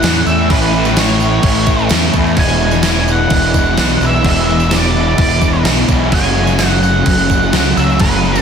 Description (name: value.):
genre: rock, shoegaze and dream pop.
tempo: 128 BPM.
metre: 4/4.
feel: straight.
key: A major.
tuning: A4 = 440 Hz.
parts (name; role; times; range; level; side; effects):
octave-fuzz lead guitar; melody; 0.0-8.4 s; B4 to G#5; -18 LUFS; equal; distortion, digital delay.
distorted electric guitar; riff; 0.0-8.4 s; E2 to A3; -20 LUFS; left 1 dB; overdrive.
overdriven semi-hollow guitar; riff; 0.0-8.4 s; E2 to F#4; -19 LUFS; right 12 dB; reverse reverb.
thick fuzz guitar; riff; 0.0-8.4 s; E2 to A3; -18 LUFS; left 12 dB; distortion, ensemble chorus.
fuzz fingered electric bass; bass; 0.0-8.4 s; E1 to E2; -17 LUFS; equal; overdrive.
gated 80s digital drum machine; drums; 0.0-8.4 s; crash cymbal, kick drum, snare drum; -16 LUFS; right 1 dB; gated reverb, gated reverb snare.
tambourine; percussion; 0.0-8.4 s; none; -30 LUFS; right 18 dB; none.
room: little or no reverb.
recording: dense, heavily limited modern master.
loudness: -10 LUFS.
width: side -7 dB against mid.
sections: 0.0-8.4 A section.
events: none.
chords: 0.0 A; 2.4 E7; 6.1 F#m.